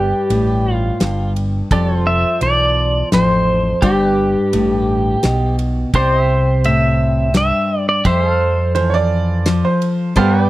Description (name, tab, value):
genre	honky-tonk and classic country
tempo	85 BPM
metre	3/4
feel	straight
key	unclear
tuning	A4 = 440 Hz
part	pedal steel guitar	melody	0.0-8.7 s	G4 to E5	-17 LUFS	equal	none
part	picked steel-string acoustic guitar	accompaniment	0.0-10.5 s	E2 to G3	-19 LUFS	left 2 dB	none
part	pedal steel guitar	sustained chords	0.0-10.5 s	F4 to G5	-25 LUFS	right 2 dB	lush chorus
part	fingered electric bass	bass	0.0-10.5 s	F1 to G2	-19 LUFS	equal	none
part	damped 70s drum kit	drums	0.3-10.3 s	kick drum, ride cymbal, snare drum	-18 LUFS	equal	none
part	bright upright piano	second line	8.7-10.5 s	B3 to D5	-19 LUFS	right 6 dB	none
room	small room ambience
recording	dry, close 1970s-style studio recording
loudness	-13 LUFS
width	side -16 dB against mid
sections	0.0-10.5 A section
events	none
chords	0.0 G; 1.7 F; 3.8 G; 5.9 C; 8.1 F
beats	0.30 1.00 | 1.71 2.42 3.12 | 3.83 4.53 5.24 | 5.94 6.64 7.35 | 8.05 8.76 9.46 | 10.16